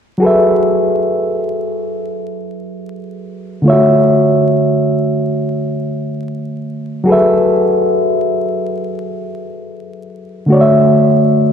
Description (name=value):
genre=R&B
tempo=free time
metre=none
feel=none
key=F# minor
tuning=A4 = 440 Hz
part: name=reed electric piano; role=accompaniment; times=0.2-11.5 s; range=D3 to E5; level=-12 LUFS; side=equal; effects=overdrive
room=wet lush hall reverb, RT60 2.6 s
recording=dreamy mix soaked in reverb, vinyl crackle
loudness=-11 LUFS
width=side -8 dB against mid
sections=0.2-11.5 A section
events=none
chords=0.2 F#m11; 3.6 Dmaj9; 7.1 F#m11; 10.5 Dmaj9